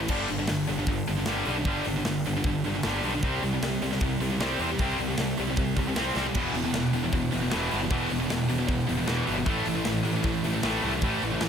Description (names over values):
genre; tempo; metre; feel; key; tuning
heavy metal; 154 BPM; 4/4; straight; E minor; A4 = 440 Hz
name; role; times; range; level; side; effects
heavy high-gain guitar; riff; 0.0-11.5 s; E2 to C4; -29 LUFS; right 8 dB; distortion
tight distorted guitar; riff; 0.0-11.5 s; E2 to C4; -30 LUFS; left 11 dB; distortion
fuzz picked electric bass; bass; 0.0-11.5 s; E1 to E2; -32 LUFS; equal; overdrive
tight metal drum kit; drums; 0.1-11.5 s; crash cymbal, hi-hat, kick drum, snare drum; -32 LUFS; equal; none
thick fuzz guitar; riff; 6.3-11.5 s; E2 to A3; -32 LUFS; equal; distortion
room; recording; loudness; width
little or no reverb; none; -24 LUFS; side -8 dB against mid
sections
0.0-11.5 A section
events
drum fill 6.2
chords
0.1 G5; 3.2 C5; 6.4 E5; 9.5 A5